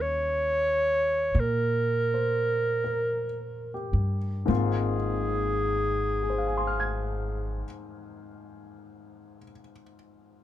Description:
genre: jazz ballad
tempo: 34-45 BPM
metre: 4/4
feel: swing 68% on 8ths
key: Ab major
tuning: A4 = 440 Hz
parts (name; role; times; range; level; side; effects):
- mellow clarinet; melody; 0.0-7.7 s; Ab4 to Db5; -27 LUFS; right 1 dB; none
- warm grand piano; accompaniment; 0.0-10.4 s; Ab2 to Ab6; -32 LUFS; left 4 dB; none
- upright bass; bass; 0.0-7.6 s; Ab1 to Bb2; -30 LUFS; equal; none
room: little or no reverb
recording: close, detailed microphones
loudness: -25 LUFS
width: side -12 dB against mid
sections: 0.0-4.5 A section; 4.5-10.4 B section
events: slowing down 0.0-4.5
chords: 0.0 Eb7; 4.5 Ab69

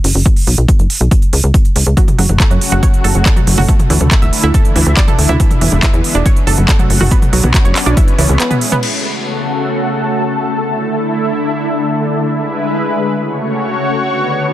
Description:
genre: uplifting trance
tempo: 140 BPM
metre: 4/4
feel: straight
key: F# minor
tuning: A4 = 441 Hz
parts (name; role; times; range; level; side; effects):
- tight sequencer bass; bass; 0.0-8.4 s; D1 to F#2; -12 LUFS; equal; sidechain pumping
- big-room dance drum kit; drums; 0.0-8.9 s; crash cymbal, handclaps, hi-hat, toms; -17 LUFS; equal; none
- electronic kick drum; drums; 0.3-8.1 s; none; -11 LUFS; equal; none
- analog string pad; sustained chords; 2.3-14.5 s; C#3 to C#5; -16 LUFS; left 1 dB; ensemble chorus, sidechain pumping
- analog pluck; arpeggios; 2.0-8.7 s; E3 to E5; -20 LUFS; right 4 dB; chorus, sidechain pumping, tape echo
room: little or no reverb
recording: dense, heavily limited modern master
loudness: -10 LUFS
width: side -13 dB against mid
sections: 0.0-8.8 A section; 8.8-14.5 B section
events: break 8.4-8.8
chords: 0.3 B5; 1.1 N.C.; 2.0 F#m; 3.7 Dsus2; 5.4 E7; 6.3 F#m; 7.1 Bmadd9; 8.0 C#m7; 8.8 F#m; 10.5 Dsus2; 12.3 E7; 13.1 F#m; 14.0 Bmadd9

